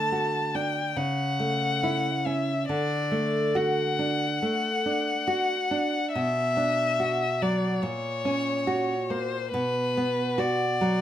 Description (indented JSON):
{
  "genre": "romantic duo for violin and classical guitar",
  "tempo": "70 BPM",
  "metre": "4/4",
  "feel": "rubato",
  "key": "D major",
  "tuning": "A4 = 441 Hz",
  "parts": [
    { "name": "rich violin", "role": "melody", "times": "0.0-11.0 s", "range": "B4 to A5", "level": "-27 LUFS", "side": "left 3 dB", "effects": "none" },
    { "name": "nylon-string guitar", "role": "accompaniment", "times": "0.0-11.0 s", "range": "A#2 to F#4", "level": "-27 LUFS", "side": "right 1 dB", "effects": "none" }
  ],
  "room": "moderate studio reverb, RT60 0.6 s",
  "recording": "none",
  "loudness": "-24 LUFS",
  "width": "side -11 dB against mid",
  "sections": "0.0-11.0 A section",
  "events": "none",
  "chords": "0.0 D; 1.0 A/C#; 2.7 D; 6.2 Bm; 7.8 F#/A#; 9.5 Bm"
}